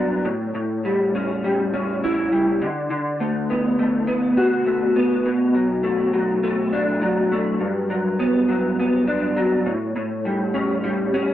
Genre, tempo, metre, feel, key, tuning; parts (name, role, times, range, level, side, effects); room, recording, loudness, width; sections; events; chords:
indie pop; 102 BPM; 4/4; straight; D major; A4 = 442 Hz
electric guitar through a small old amp; solo; 0.0-11.3 s; G2 to F#4; -19 LUFS; equal; ensemble chorus, vibrato effect, tape echo
wet studio reverb, RT60 0.5 s; worn, warbling old tape, cassette tape, warbly pitch drift; -19 LUFS; side -12 dB against mid
0.0-11.3 A section
0.3 A7; 2.6 D6; 5.3 Bm7; 7.6 Gmaj7; 9.7 A7